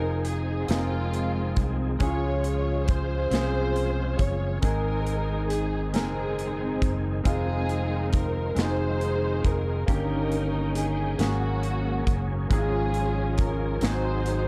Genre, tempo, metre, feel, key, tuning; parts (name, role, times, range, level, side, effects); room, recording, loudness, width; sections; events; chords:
slow gospel; 46 BPM (dotted quarters); 6/8; straight; Db major; A4 = 439 Hz
dark studio string section; melody; 0.0-14.5 s; Ab3 to Db5; -32 LUFS; equal
clear concert grand piano; accompaniment; 0.0-14.5 s; G2 to Bb4; -35 LUFS; equal
overdriven tonewheel organ; sustained chords; 0.0-14.5 s; Eb3 to G5; -39 LUFS; equal; fast rotary speaker, chorus vibrato
fingered electric bass; bass; 0.0-14.5 s; F1 to Db2; -31 LUFS; equal
modern studio drum kit; drums; 0.2-14.5 s; hi-hat, kick drum, snare drum; -30 LUFS; equal
small room ambience; dark, warm production; -26 LUFS; mono
0.0-14.5 A section
0.0 Fm7; 2.0 Dbmaj7; 4.6 Ab; 7.3 Fm7; 9.9 Eb7/G; 11.2 Ab9sus4; 12.5 Db/Ab; 13.8 Ab7